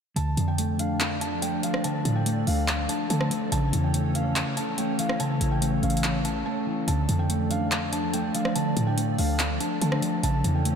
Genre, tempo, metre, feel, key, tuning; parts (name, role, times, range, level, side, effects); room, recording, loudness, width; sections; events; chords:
hip hop, trap; 143 BPM; 4/4; half-time; D harmonic minor; A4 = 440 Hz
felt-muted upright piano; melody; 0.2-10.8 s; F5 to A5; -32 LUFS; right 1 dB; tape echo
mellow electric guitar; accompaniment; 0.2-10.8 s; C#3 to D5; -27 LUFS; equal
hollow soft pad; sustained chords; 0.2-10.8 s; E3 to D5; -32 LUFS; left 1 dB; ensemble chorus
short 808-style bass; bass; 0.2-10.8 s; A1 to D3; -28 LUFS; equal
trap drum kit; drums; 0.2-10.8 s; handclaps, hi-hat, rim click; -31 LUFS; equal; overdrive
wet cathedral reverb, RT60 6.0 s; dreamy mix soaked in reverb; -23 LUFS; side -7 dB against mid
0.2-10.8 A section
break 6.5-6.9
0.2 Dm; 3.5 A; 6.9 Dm; 10.2 A